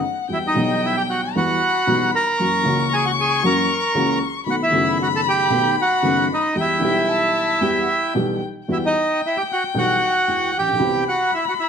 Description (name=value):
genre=tango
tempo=115 BPM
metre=4/4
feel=rubato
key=E harmonic minor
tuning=A4 = 440 Hz
part: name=dark violin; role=second line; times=0.0-11.7 s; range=F#5 to C#6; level=-25 LUFS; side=left 7 dB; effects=none
part: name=bandoneon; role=melody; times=0.3-11.7 s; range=D#4 to A#5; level=-19 LUFS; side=right 2 dB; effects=none
part: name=dark upright piano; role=accompaniment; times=0.3-11.0 s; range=F#1 to G4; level=-22 LUFS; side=equal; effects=none
room=moderate large studio reverb, RT60 0.9 s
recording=none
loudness=-17 LUFS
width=side -7 dB against mid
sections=0.0-8.7 A section; 8.7-11.7 A section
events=none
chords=0.3 Emadd9; 2.4 F#7; 4.5 B7; 6.6 Em; 8.7 Emadd9; 10.8 Cmaj7